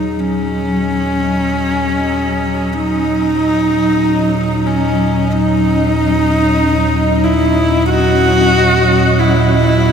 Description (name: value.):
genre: dark ambient drone.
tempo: free time.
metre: none.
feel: none.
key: Eb in sen.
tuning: A4 = 440 Hz.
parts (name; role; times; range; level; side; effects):
rich horsehead fiddle; melody; 0.0-9.9 s; Db4 to Gb4; -14 LUFS; equal; shimmer reverb, ping-pong delay.
granular cloud pad; sustained chords; 0.0-9.9 s; Gb3 to Eb5; -17 LUFS; equal; built-in reverb, shimmer reverb.
deep rumbling drone; drone; 0.0-9.9 s; Eb2 to Bb2; -18 LUFS; right 2 dB; built-in reverb.
quartz singing bowl; texture; 0.0-9.9 s; Ab4; -34 LUFS; left 1 dB; none.
room: wet cathedral reverb, RT60 5.8 s.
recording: none.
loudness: -11 LUFS.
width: side -7 dB against mid.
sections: 0.0-9.9 A section.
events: fade-in on synth drone 0.0-9.9; fade-in on ambient pad 0.0-9.9.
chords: 0.0 Ebm.